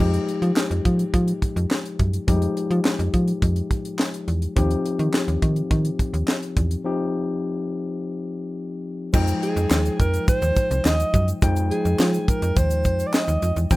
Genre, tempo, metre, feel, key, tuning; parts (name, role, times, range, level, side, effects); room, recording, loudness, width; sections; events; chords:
early-eighties boogie funk; 105 BPM; 4/4; straight; F minor; A4 = 444 Hz
tine electric piano; accompaniment; 0.0-13.8 s; F3 to G5; -26 LUFS; left 3 dB
slap-like FM bass; bass; 0.0-13.8 s; C2 to F3; -21 LUFS; equal
tight funk drum kit; drums; 0.0-13.8 s; crash cymbal, handclaps, hi-hat, kick drum, snare drum; -22 LUFS; equal
tube shaker; percussion; 9.1-13.8 s; -41 LUFS; right 3 dB
breathy alto saxophone; melody; 9.4-13.6 s; Ab4 to Eb5; -25 LUFS; right 2 dB; tape echo
light reverb; rough home demo mix; -20 LUFS; side -19 dB against mid
0.0-9.1 A section; 9.1-13.8 B section
break 6.9-9.1
0.0 Fm9; 4.6 Eb69; 9.1 Fm9